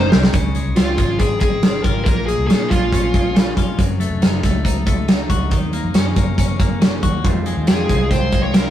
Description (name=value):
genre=jangly indie pop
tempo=139 BPM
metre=4/4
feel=straight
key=Db major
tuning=A4 = 440 Hz
part: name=dark smooth lead guitar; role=melody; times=0.0-3.5, 7.7-8.7 s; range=F4 to Db5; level=-21 LUFS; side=equal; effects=overdrive
part: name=electric guitar through a small old amp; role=accompaniment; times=0.0-0.3, 7.2-8.7 s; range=F2 to Bb4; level=-25 LUFS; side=right 2 dB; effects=none
part: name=twelve-string electric guitar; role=arpeggios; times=0.0-8.7 s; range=F2 to Bb4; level=-25 LUFS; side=left 4 dB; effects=none
part: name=vintage muted fingered electric bass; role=bass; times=0.0-8.7 s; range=F1 to Bb2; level=-22 LUFS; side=equal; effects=none
part: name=big rock drum kit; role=drums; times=0.1-8.6 s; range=hi-hat, kick drum, snare drum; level=-16 LUFS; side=equal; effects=none
room=light reverb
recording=rough rehearsal-room recording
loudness=-14 LUFS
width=side -11 dB against mid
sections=0.3-8.7 A section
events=drum fill 0.0-0.3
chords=0.3 Dbmaj7; 2.1 Bbm7; 3.8 Gbm6; 5.5 Ebm7; 7.2 Fm7